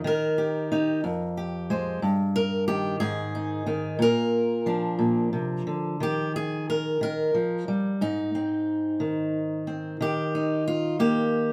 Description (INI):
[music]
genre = folk, solo fingerstyle acoustic guitar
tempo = 60 BPM (dotted quarters)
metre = 6/8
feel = straight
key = Eb major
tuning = A4 = 440 Hz
[part]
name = fingerpicked steel-string acoustic guitar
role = solo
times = 0.0-11.5 s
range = F2 to C5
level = -26 LUFS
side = equal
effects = none
[sound]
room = moderate studio reverb, RT60 0.8 s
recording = band playing live in one room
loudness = -26 LUFS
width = mono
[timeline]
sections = 0.0-6.0 A section; 6.0-11.5 B section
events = none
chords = 0.0 Eb; 1.0 Fmadd9; 2.0 Eb/G; 3.0 Ab5; 4.0 Bb; 6.0 Eb; 8.0 Ab; 10.0 Eb